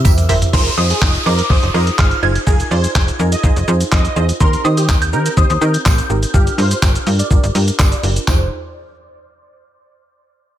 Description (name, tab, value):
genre	dance-pop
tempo	124 BPM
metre	4/4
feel	straight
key	F dorian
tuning	A4 = 441 Hz
part	shimmering bell with halo	melody	0.0-7.8 s	C6 to Ab6	-23 LUFS	equal	ensemble chorus, phaser, low-pass filter, dub echo
part	wide unison pluck	accompaniment	0.0-8.5 s	C4 to E5	-22 LUFS	right 2 dB	sidechain pumping, low-pass filter
part	slap-like FM bass	bass	0.0-8.5 s	F1 to Eb3	-16 LUFS	equal	sidechain pumping
part	dusty soul sampler-style drum kit	drums	0.0-8.4 s	crash cymbal, handclaps, hi-hat, kick drum, shaker, toms	-15 LUFS	equal	none
part	tambourine	percussion	0.1-0.2, 4.9-8.5 s	none	-30 LUFS	right 11 dB	none
part	supersaw chords	melody	0.5-8.5 s	G4 to Eb5	-25 LUFS	right 3 dB	sidechain pumping, low-pass filter, dub echo
part	downlifter	sound effects	0.5-4.4 s	none	-24 LUFS	equal	none
room	digital ambience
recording	none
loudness	-12 LUFS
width	side -12 dB against mid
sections	0.5-8.3 A section; 8.3-10.2 B section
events	drum fill 0.0-0.5; filter sweep 0.5-8.3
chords	0.0 C7; 0.5 Fm7; 4.4 Eb6; 6.3 Gm7; 8.3 Fm7